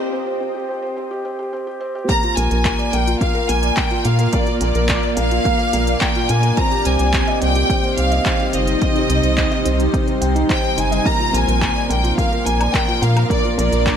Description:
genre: piano and strings electronica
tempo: 107 BPM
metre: 4/4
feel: straight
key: unclear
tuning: A4 = 441 Hz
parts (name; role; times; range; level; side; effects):
- felt-muted upright piano; riff; 0.0-14.0 s; Bb3 to G5; -22 LUFS; equal; ping-pong delay
- rich studio violin section; melody; 2.1-14.0 s; D5 to Bb5; -21 LUFS; equal; none
- granular cloud pad; sustained chords; 3.5-14.0 s; Bb2 to D5; -24 LUFS; equal; built-in reverb, sidechain pumping
- deep house drum kit; drums; 2.1-14.0 s; handclaps, hi-hat, woodblock; -25 LUFS; equal; none
- electronic kick drum; drums; 2.1-14.0 s; none; -21 LUFS; equal; none
- round analog bass; bass; 2.4-13.9 s; G1 to Bb2; -19 LUFS; equal; sidechain pumping
room: light reverb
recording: high-pass filter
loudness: -15 LUFS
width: side -8 dB against mid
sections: 0.0-2.1 A section; 2.1-14.0 B section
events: break 0.0-2.1; build-up 0.0-2.1; filter sweep on ambient pad 0.0-2.1; filter sweep on violin section 0.0-2.1; filter sweep 0.0-2.1; drop 2.1-14.0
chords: 0.0 Cm; 2.1 Bb; 6.6 Cm; 11.1 Bb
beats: 0.41 0.97 1.53 | 2.09 2.65 3.21 3.77 | 4.33 4.89 5.45 6.01 | 6.57 7.13 7.70 8.26 | 8.82 9.38 9.94 10.50 | 11.06 11.62 12.18 12.74 | 13.30 13.86

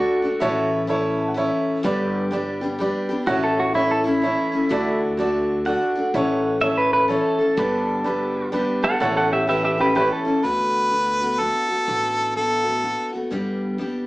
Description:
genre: honky-tonk and classic country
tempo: 126 BPM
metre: 3/4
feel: swing 63% on 8ths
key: D major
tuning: A4 = 440 Hz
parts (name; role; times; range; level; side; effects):
- pedal steel guitar; second line; 0.0-0.7, 3.3-10.4 s; E4 to F#5; -21 LUFS; right 1 dB; none
- picked steel-string acoustic guitar; accompaniment; 0.0-14.1 s; G2 to A4; -23 LUFS; left 1 dB; none
- warm upright piano; accompaniment; 0.0-10.4 s; D4 to A5; -25 LUFS; right 1 dB; none
- upright bass; bass; 0.4-14.1 s; G1 to D2; -33 LUFS; equal; none
- bright harmonica; melody; 10.4-13.1 s; A4 to B4; -20 LUFS; equal; none
room: wet studio reverb, RT60 0.6 s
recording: heard from further back in the room, small speaker sound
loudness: -19 LUFS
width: side -19 dB against mid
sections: 0.0-10.4 A section; 10.4-14.1 B section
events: pedal steel guitar solo 0.0-10.4; upright piano fill 0.9-1.8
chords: 0.4 A; 1.8 G; 3.3 A; 4.7 D; 6.1 A; 7.6 G; 9.0 A; 10.4 D6; 13.3 G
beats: | 0.41 0.89 1.37 | 1.84 2.32 2.80 | 3.28 3.75 4.23 | 4.71 5.19 5.66 | 6.14 6.62 7.10 | 7.57 8.05 8.53 | 9.01 9.48 9.96 | 10.44 10.92 11.40 | 11.88 12.36 12.84 | 13.32 13.79

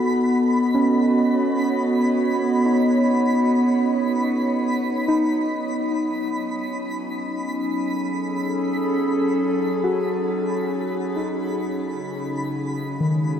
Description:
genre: ambient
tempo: 72 BPM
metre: 4/4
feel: straight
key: B mixolydian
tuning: A4 = 441 Hz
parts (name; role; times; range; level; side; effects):
- warbly tape-like pad; sustained chords; 0.0-13.4 s; C#3 to G#5; -21 LUFS; equal; chorus, built-in reverb, shimmer reverb
- muted felt-like synth keys; arpeggios; 0.0-13.4 s; D#3 to A4; -25 LUFS; equal; chorus, tape echo, shimmer reverb
- twinkling granular texture; texture; 0.0-13.4 s; B5; -30 LUFS; right 1 dB; built-in reverb, shimmer reverb
room: wet huge ambient reverb, RT60 8.9 s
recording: dark, warm production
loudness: -20 LUFS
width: side -9 dB against mid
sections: 0.0-13.4 A section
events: fade-out on synth texture 0.0-13.4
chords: 0.0 B; 5.2 F#madd9; 11.9 C#sus2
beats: 0.17 1.01 | 1.86 2.70 3.54 4.37 | 5.20 6.03 6.86 7.69 | 8.53 9.36 10.20 11.05 | 11.90 12.75

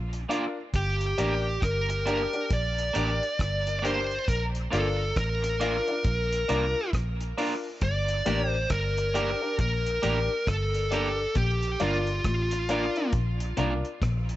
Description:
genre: roots reggae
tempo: 68 BPM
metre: 4/4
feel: swing 61% on 16ths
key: G minor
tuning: A4 = 440 Hz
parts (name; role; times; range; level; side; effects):
- vintage muted fingered electric bass; bass; 0.0-14.4 s; G1 to C2; -29 LUFS; equal; none
- cloth-damped thuddy drum kit; drums; 0.1-14.4 s; hi-hat, kick drum, rim click; -31 LUFS; equal; dub echo
- electric guitar at the edge of break-up; accompaniment; 0.3-13.7 s; Bb3 to Bb4; -34 LUFS; right 3 dB; tape echo
- warm grand piano; stabs; 0.3-13.8 s; D4 to D5; -33 LUFS; left 3 dB; none
- high-gain lead guitar; melody; 0.8-13.1 s; F4 to D5; -29 LUFS; equal; distortion, tape echo
- clean electric guitar; riff; 7.8-14.3 s; G2 to C3; -34 LUFS; left 4 dB; none
room: light reverb, small room ambience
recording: nothing above 7.9 kHz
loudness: -25 LUFS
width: side -15 dB against mid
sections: 0.0-14.4 A section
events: none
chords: 0.0 Bb; 0.7 Gm; 4.3 Bb; 7.8 Gm; 11.4 Bb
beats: | 0.74 1.62 2.51 3.39 | 4.28 5.16 6.05 6.93 | 7.82 8.70 9.59 10.47 | 11.36 12.25 13.13 14.02

